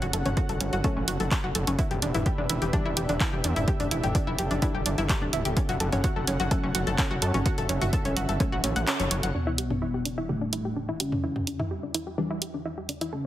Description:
melodic techno; 127 BPM; 4/4; straight; E dorian; A4 = 440 Hz
lush unison pad; sustained chords; 0.0-13.3 s; E2 to F#5; -36 LUFS; equal; chorus, sidechain pumping
analog pluck; arpeggios; 0.0-13.2 s; C#4 to F#5; -31 LUFS; equal; chorus, sidechain pumping, dub echo
filtered dub chord stab; stabs; 0.0-13.1 s; D3 to D4; -34 LUFS; left 1 dB; chorus, cassette tape, sidechain pumping, dub echo
gritty driven synth bass; bass; 0.0-9.3 s; D1 to F#2; -29 LUFS; equal; sidechain pumping
punchy analog drum machine; drums; 0.0-13.1 s; handclaps, hi-hat, toms; -30 LUFS; right 1 dB
electronic kick drum; drums; 0.4-8.5 s; -28 LUFS; equal
soft octave-layered synth lead; melody; 9.3-13.3 s; A3 to C#4; -31 LUFS; left 1 dB; chorus, tremolo, tape echo
sub drop; sound effects; 9.3-11.2 s; -35 LUFS; equal
light reverb, digital ambience; heavily compressed radio sound, multiband compression; -24 LUFS; side -13 dB against mid
0.0-9.3 A section; 9.3-13.3 B section
kick drops out 8.9-9.3; band accent 8.9; impact 9.3-11.2; filter sweep on soft synth lead 9.3-13.3; filter sweep on analog synth pad 9.3-13.3
0.0 F#m; 1.8 Em7; 5.6 F#m; 9.3 Em7
0.37 0.84 1.31 | 1.79 2.26 2.73 3.21 | 3.68 4.15 4.62 5.09 | 5.57 6.04 6.51 6.98 | 7.46 7.93 8.40 8.87 | 9.35 9.82 10.29 10.76 | 11.24 11.71 12.18 12.65 | 13.13

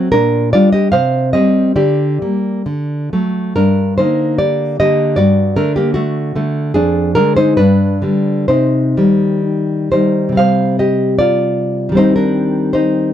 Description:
romantic piece for solo classical guitar; 61-79 BPM; 2/4; rubato; G minor, C minor from 6.8 s; A4 = 440 Hz
nylon-string guitar; solo; 0.0-13.1 s; F2 to F5; -12 LUFS; equal
light reverb; dry, close 1970s-style studio recording; -12 LUFS; side -10 dB against mid
0.0-10.4 A section; 10.4-13.1 B section
0.1 Gm/Bb; 0.9 Cm; 1.8 Gm/D; 2.7 D; 3.6 Gm; 5.2 D/G; 6.8 Ddim/F; 7.6 G; 8.5 Cm; 10.4 C5; 12.0 Cm/Eb
| 0.12 0.92 | 1.76 2.67 | 3.56 4.40 | 5.20 5.97 | 6.76 7.58 | 8.49 9.44 | 10.38 11.19 | 11.97 12.74

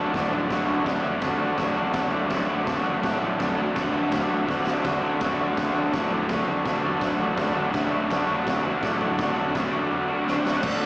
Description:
garage rock duo or trio; 166 BPM; 4/4; straight; D major; A4 = 440 Hz
crunchy overdriven guitar; riff; 0.0-10.9 s; D3 to F#4; -23 LUFS; equal; slapback echo
fuzz fingered electric bass; bass; 0.0-10.9 s; D2 to A2; -31 LUFS; equal; overdrive
raw garage drum kit; drums; 0.1-10.7 s; crash cymbal, kick drum, snare drum, toms; -29 LUFS; equal
moderate club reverb, RT60 0.7 s; live gig heard through the venue's PA, recital hall reverb, small speaker sound; -22 LUFS; side -23 dB against mid
0.0-10.6 A section
drum fill 4.5-4.8, 10.3-10.6
0.0 D
0.14 | 0.51 0.87 1.23 1.59 | 1.95 2.31 2.68 3.04 | 3.40 3.76 4.12 4.49 | 4.85 5.21 5.57 5.94 | 6.30 6.66 7.02 7.39 | 7.75 8.11 8.47 8.83 | 9.20 9.56 9.92 10.28 | 10.64

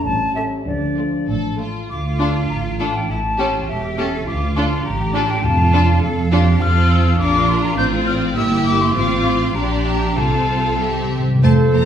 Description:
quick classical-period movement for symphony orchestra; 95-104 BPM; 2/4; rubato; D minor, F major from 6.6 s; A4 = 435 Hz
silver concert flute; second line; 0.0-11.9 s; D5 to G6; -22 LUFS; left 2 dB
rich studio cello section; bass; 0.0-11.8 s; A2 to A4; -26 LUFS; right 3 dB
warm studio double bass section; bass; 0.0-11.8 s; E1 to F2; -20 LUFS; right 1 dB
dark French horn section; sustained chords; 0.1-1.6, 11.4-11.9 s; F3 to C5; -24 LUFS; left 2 dB
rich studio violin section; melody; 0.4-11.8 s; A4 to F5; -30 LUFS; left 3 dB
warm studio violin section; second line; 0.4-11.9 s; F4 to Bb5; -27 LUFS; left 3 dB
dark studio viola section; accompaniment; 0.4-11.9 s; A3 to A4; -23 LUFS; right 1 dB
timpani; percussion; 5.4-6.3, 10.2-11.4 s; F2 to C3; -19 LUFS; left 1 dB
mellow clarinet; second line; 11.4-11.9 s; A4; -26 LUFS; left 4 dB
warm oboe; second line; 11.4-11.9 s; C5; -28 LUFS; right 4 dB
clear bassoon; accompaniment; 11.4-11.9 s; F3; -26 LUFS; right 4 dB
wet recital hall reverb, RT60 1.3 s; heard from further back in the room; -15 LUFS; side -9 dB against mid
0.0-1.9 A section; 1.9-11.4 B section
timpani fill 10.8-11.4
0.0 A7; 0.7 Dm; 3.1 A7; 4.3 Dm; 5.4 Dm/F; 6.6 F; 7.2 Bb; 7.8 F/A; 8.4 Edim/G; 9.0 F/A; 9.6 Gm/Bb; 10.2 F/C
0.04 | 0.66 1.29 | 1.90 2.50 | 3.09 3.68 | 4.27 4.85 | 5.43 6.03 | 6.61 7.19 | 7.78 8.36 | 8.96 9.56 | 10.18 10.81 | 11.43

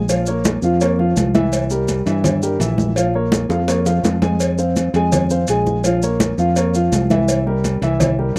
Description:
latin, salsa; 167 BPM; 4/4; straight; A4 = 439 Hz
dark grand piano; accompaniment; 0.0-8.4 s; E3 to Ab5; -22 LUFS; equal; slapback echo
fingered electric bass; bass; 0.0-8.4 s; Bb1 to G2; -22 LUFS; equal
congas; percussion; 0.1-8.4 s; -23 LUFS; equal
cowbell and bongos; percussion; 0.1-8.4 s; -27 LUFS; equal
maracas; percussion; 0.1-8.4 s; -31 LUFS; equal
little or no reverb; recorded outdoors, with no room sound; -17 LUFS; mono
0.0-8.4 A section
drum fill 3.5-4.4
0.1 Bbm; 1.5 C7; 3.0 Bbm; 4.4 Fm; 5.8 Bbm; 7.3 C7
| 0.09 0.45 0.81 1.17 | 1.52 1.89 2.24 2.60 | 2.96 3.32 3.68 4.04 | 4.40 4.76 5.12 5.48 | 5.84 6.20 6.56 6.92 | 7.28 7.64 8.00 8.36

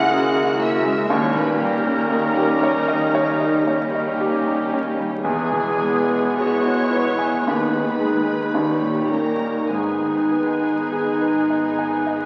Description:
classical, romantic movement for piano and orchestra; 49-61 BPM; 4/4; rubato; G# minor; A4 = 437 Hz
clear baby grand piano; melody; 0.0-12.3 s; C#2 to G#5; -25 LUFS; equal
warm symphonic violin section; melody; 0.0-12.3 s; G#5 to F#6; -37 LUFS; equal
clear chamber violin section; second line; 0.0-12.3 s; G#4 to F#5; -35 LUFS; equal
clear oboe; second line; 0.0-12.3 s; A#4 to C#5; -33 LUFS; equal
concert flute; second line; 0.0-12.3 s; G#4 to F#5; -31 LUFS; equal
warm clarinet; second line; 0.0-12.3 s; B3 to D#4; -28 LUFS; equal
clear bassoon; accompaniment; 0.0-12.3 s; G3 to G#3; -32 LUFS; equal
rich symphonic viola section; accompaniment; 0.0-12.3 s; G3 to A#4; -30 LUFS; equal
bright trombone section; sustained chords; 0.0-12.3 s; B2 to G#3; -37 LUFS; equal
dark French horn section; sustained chords; 0.0-12.3 s; A#3 to E4; -32 LUFS; equal
clear symphonic cello section; bass; 0.0-12.3 s; D#2 to C#3; -34 LUFS; equal
warm symphonic double bass section; bass; 0.0-12.3 s; E1 to D#2; -39 LUFS; equal
wet scoring stage reverb, RT60 1.4 s; very old 78 rpm record, vinyl crackle; -20 LUFS; mono
0.0-12.3 A section
0.0 A#m7b5/C#; 1.1 D#7; 5.2 E; 7.5 G#m/D#; 8.6 D#7; 9.7 G#m
0.11 | 1.10 2.11 3.15 4.20 | 5.24 6.37 7.47 8.55 | 9.69 10.91 12.06

